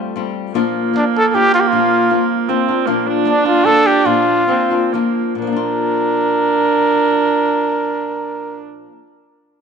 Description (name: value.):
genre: mexican folk, mariachi.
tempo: 123-156 BPM.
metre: 3/4.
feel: straight.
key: Bb major.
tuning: A4 = 440 Hz.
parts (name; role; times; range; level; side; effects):
warm viola; second line; 0.0-8.6 s; A3 to D4; -18 LUFS; right 12 dB; none.
flamenco guitar; accompaniment; 0.0-9.1 s; Bb2 to F4; -20 LUFS; left 10 dB; none.
dark trumpet; melody; 1.0-8.6 s; D4 to Bb4; -16 LUFS; left 1 dB; none.
room: moderate echo chamber reverb, RT60 2.1 s.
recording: 1960s-style stereo with parts hard left and right.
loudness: -13 LUFS.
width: side -6 dB against mid.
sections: 0.0-5.4 A section; 5.4-8.3 B section.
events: slowing down 2.9-5.4.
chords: 0.0 Fadd9; 0.5 Bb.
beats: 0.16 | 0.55 0.94 1.32 | 1.71 2.10 2.48 | 2.87 3.26 3.65 | 4.06 4.49 4.94 | 5.41 5.90 6.38 | 6.87 7.35 7.83.